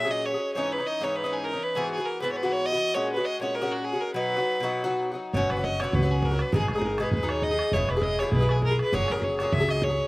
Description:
celtic folk, Celtic reel; 201 BPM; 4/4; swing 55% on 8ths; A4 = 442 Hz
rich fiddle; melody; 0.0-10.1 s; F#4 to E5; -28 LUFS; right 1 dB
Irish bouzouki; accompaniment; 0.0-10.1 s; G#2 to G#4; -28 LUFS; left 2 dB
upright bass; bass; 5.3-10.0 s; E1 to D#2; -27 LUFS; equal
bodhran; percussion; 5.3-9.9 s; -31 LUFS; right 1 dB
little or no reverb; recorded outdoors, with no room sound; -24 LUFS; side -21 dB against mid
0.0-5.3 A section; 5.3-10.1 A section
0.0 F#add9; 0.6 C#madd9; 1.8 Eadd9; 2.9 F#add9; 4.1 B; 5.3 F#sus4; 6.5 G#m; 7.7 E; 8.9 F#add9
0.25 | 0.55 0.85 1.15 1.45 | 1.75 2.05 2.35 2.65 | 2.95 3.25 3.55 3.85 | 4.15 4.45 4.74 5.04 | 5.34 5.64 5.94 6.24 | 6.54 6.83 7.13 7.43 | 7.73 8.03 8.33 8.62 | 8.92 9.22 9.52 9.82

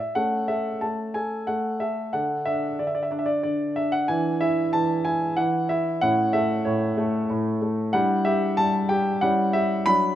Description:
classical-period piano sonatina; 93 BPM; 3/4; rubato; A major; A4 = 440 Hz
warm grand piano; solo; 0.0-10.2 s; A2 to B5; -21 LUFS; equal
moderate recital hall reverb, RT60 1.6 s; close, detailed microphones; -21 LUFS; side -12 dB against mid
0.2-10.2 A section
0.2 A; 2.1 D5; 4.1 E9; 6.0 A; 7.9 Em7/G; 9.2 Em69/G
| 0.16 0.82 1.49 | 2.14 2.79 3.45 | 4.10 4.74 5.38 | 6.02 6.66 7.30 | 7.95 8.59 9.23 | 9.87

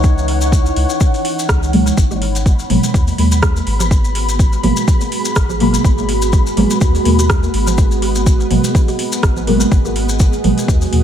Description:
dub techno; 124 BPM; 4/4; swing 56% on 16ths; A4 = 440 Hz
deep dark ambient pad; sustained chords; 0.0-11.0 s; E3 to C#5; -22 LUFS; right 2 dB; chorus, built-in reverb, sidechain pumping
soft dub sub bass; bass; 0.0-11.0 s; G#1 to D#2; -18 LUFS; equal; sidechain pumping
electronic kick drum; drums; 0.0-10.8 s; -13 LUFS; equal
maracas; percussion; 0.0-10.9 s; -25 LUFS; left 5 dB
flickering grainy texture; texture; 0.0-11.0 s; B3 to B5; -24 LUFS; left 1 dB; built-in reverb, sidechain pumping
deep house drum kit; drums; 0.3-11.0 s; hi-hat, rim click; -24 LUFS; equal; dub echo
deep mellow chord stab; stabs; 1.7-11.0 s; B2 to A#3; -17 LUFS; equal; chorus, phaser, sidechain pumping, dub echo
bongos and congas; percussion; 2.1-10.8 s; -27 LUFS; right 6 dB
light reverb, digital ambience; -12 LUFS; side -9 dB against mid
0.0-11.0 A section
0.0 G#m9
| 0.04 0.52 1.01 1.49 | 1.97 2.46 2.94 3.43 | 3.91 4.39 4.88 5.36 | 5.84 6.33 6.81 7.30 | 7.78 8.26 8.75 9.23 | 9.72 10.20 10.68

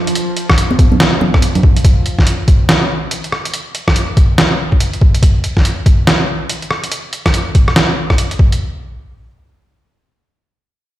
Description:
deep dubstep; 142 BPM; 4/4; swing 62% on 16ths, half-time; A4 = 440 Hz
bowed-like drone; sustained chords; 0.0-1.9 s; F3; -23 LUFS; equal; built-in reverb
trip hop sampler-style drum kit; drums; 0.1-8.6 s; hi-hat, rim click, snare drum; -15 LUFS; equal
electronic kick drum; drums; 0.5-8.5 s; -11 LUFS; equal
congas; percussion; 0.7-1.6 s; -18 LUFS; right 2 dB; dub echo
light reverb, digital ambience; played on a big sound system in a bare room, large studio reverb; -11 LUFS; side -14 dB against mid
0.0-8.6 A section; 8.6-11.0 B section
| 0.15 0.58 1.00 1.42 | 1.84 2.27 2.69 3.11 | 3.54 3.96 4.38 4.80 | 5.22 5.65 6.07 6.49 | 6.92 7.34 7.76 8.18

